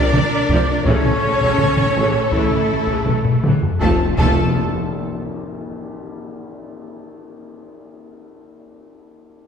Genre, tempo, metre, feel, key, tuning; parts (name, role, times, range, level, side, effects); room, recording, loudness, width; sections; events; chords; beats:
cinematic, epic orchestral film score; 81 BPM; 4/4; straight; A4 = 438 Hz
clear symphonic violin section; melody; 0.0-4.6 s; E4 to A5; -27 LUFS; left 3 dB
dark studio violin section; second line; 0.0-4.6 s; A4 to A5; -28 LUFS; equal
flute section; second line; 0.0-4.6 s; A4 to A5; -25 LUFS; right 2 dB
clear symphonic viola section; accompaniment; 0.0-4.6 s; C3 to F4; -27 LUFS; equal
warm trumpet section; stabs; 0.0-4.5 s; A4 to D5; -24 LUFS; left 1 dB
clear symphonic cello section; bass; 0.0-4.6 s; A3 to D4; -25 LUFS; right 1 dB
rich studio double bass section; bass; 0.0-4.6 s; F1 to A1; -25 LUFS; right 1 dB
taiko ensemble; drums; 0.1-5.6 s; -20 LUFS; left 1 dB
dark tuba; bass; 0.2-4.5 s; F1 to A1; -26 LUFS; right 2 dB
mellow French horn section; sustained chords; 0.9-4.1 s; C4 to F4; -28 LUFS; left 2 dB
tam-tam; percussion; 3.8-7.1 s; -31 LUFS; left 4 dB
timpani; percussion; 3.8-4.5 s; F2; -26 LUFS; equal
impact; sound effects; 3.8-6.8 s; -30 LUFS; left 1 dB
wet scoring stage reverb, RT60 2.0 s; heard from further back in the room; -15 LUFS; side -7 dB against mid
0.0-3.8 A section; 3.8-6.8 B section
drum fill 3.1-3.8; band accent 3.8-4.6; impact 3.8-6.8
0.0 F5; 0.9 A; 3.8 F
0.14 | 0.86 1.59 2.33 3.07 | 3.81 4.56 5.31 6.05